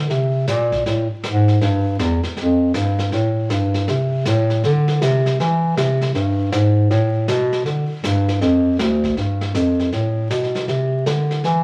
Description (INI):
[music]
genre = country, western swing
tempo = 159 BPM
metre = 4/4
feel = swing 64% on 8ths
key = G mixolydian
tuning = A4 = 445 Hz
[part]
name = mellow bass clarinet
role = bass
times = 0.0-11.6 s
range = D2 to E3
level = -19 LUFS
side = equal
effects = none
[part]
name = vintage brush drum kit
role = drums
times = 0.1-11.6 s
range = brushed snare drum, hi-hat, kick drum, snare drum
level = -30 LUFS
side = equal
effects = none
[sound]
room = moderate large studio reverb, RT60 0.9 s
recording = vinyl crackle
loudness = -19 LUFS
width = mono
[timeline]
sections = 0.0-9.2 A section; 9.2-11.6 B section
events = none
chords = none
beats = | 0.10 0.48 0.85 1.23 | 1.61 1.99 2.37 2.74 | 3.12 3.50 3.88 4.25 | 4.63 5.01 5.39 5.76 | 6.14 6.52 6.90 7.28 | 7.65 8.03 8.41 8.79 | 9.17 9.54 9.92 10.30 | 10.68 11.06 11.44